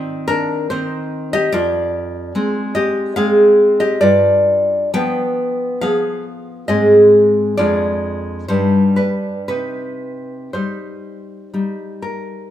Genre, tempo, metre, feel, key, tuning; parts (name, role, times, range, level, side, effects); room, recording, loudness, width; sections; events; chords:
romantic piece for solo classical guitar; 57-74 BPM; 3/4; rubato; C minor; A4 = 440 Hz
nylon-string guitar; solo; 0.0-12.5 s; F2 to G5; -14 LUFS; equal
light reverb; minimal, uncompressed stereo recording; -14 LUFS; side -11 dB against mid
0.0-12.5 A section
0.0 Ab (rootless); 1.5 Dm7b5/F; 4.0 G7b9; 6.7 Ab; 7.6 Ddim/F; 8.5 G; 9.5 Cm